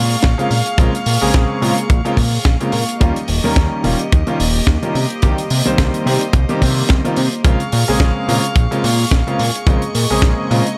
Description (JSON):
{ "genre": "nu-disco, nu disco", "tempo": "108 BPM", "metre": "4/4", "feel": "swing 56% on 16ths", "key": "Bb dorian", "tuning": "A4 = 440 Hz", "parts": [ { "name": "warm chamber string section", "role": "sustained chords", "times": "0.0-10.8 s", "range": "Bb3 to Db6", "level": "-25 LUFS", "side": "equal", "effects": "sidechain pumping" }, { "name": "fat analog bass", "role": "bass", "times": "0.0-10.6 s", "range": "Eb1 to C3", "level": "-20 LUFS", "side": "equal", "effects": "none" }, { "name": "kick drum", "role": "drums", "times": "0.2-10.3 s", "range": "none", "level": "-17 LUFS", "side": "equal", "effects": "none" }, { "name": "tight funk drum kit", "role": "drums", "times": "0.2-10.8 s", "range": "hi-hat, snare drum", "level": "-25 LUFS", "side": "equal", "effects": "none" }, { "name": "clear concert grand piano", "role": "accompaniment", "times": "0.4-10.6 s", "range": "Db3 to C5", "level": "-22 LUFS", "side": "equal", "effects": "slapback echo" } ], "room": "studio reverb", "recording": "none", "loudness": "-16 LUFS", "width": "mono", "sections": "0.0-10.8 A section", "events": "none", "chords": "0.0 Bbm7; 3.0 Eb7; 5.0 Cm7; 7.5 Bbm7", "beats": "0.23 | 0.78 1.34 1.90 2.45 | 3.01 3.56 4.12 4.67 | 5.23 5.78 6.34 6.90 | 7.45 8.01 8.56 9.12 | 9.67 10.23" }